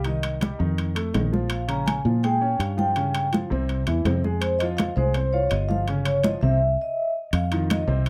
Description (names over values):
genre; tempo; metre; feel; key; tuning
Afro-Cuban jazz; 165 BPM; 4/4; straight; F minor; A4 = 441 Hz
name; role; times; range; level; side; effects
vibraphone with soft mallets; melody; 0.0-8.0 s; C5 to Bb5; -28 LUFS; equal; none
fingered electric bass; bass; 0.0-8.1 s; G1 to Bb2; -27 LUFS; equal; none
timbales; percussion; 0.0-8.1 s; none; -35 LUFS; equal; none
warm baby grand piano; accompaniment; 0.1-8.1 s; C3 to F5; -31 LUFS; equal; none
congas; percussion; 0.1-8.1 s; none; -31 LUFS; equal; none
room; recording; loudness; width
moderate club ambience, RT60 0.5 s; none; -24 LUFS; mono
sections
0.0-7.3 A section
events
stop 6.6-7.3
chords
0.1 Cm; 0.8 F7; 1.5 Bbm7; 3.0 Dbmaj7#11; 3.7 C; 4.4 Fmadd9; 5.9 Eb13/G (rootless); 6.6 Cm; 7.3 F5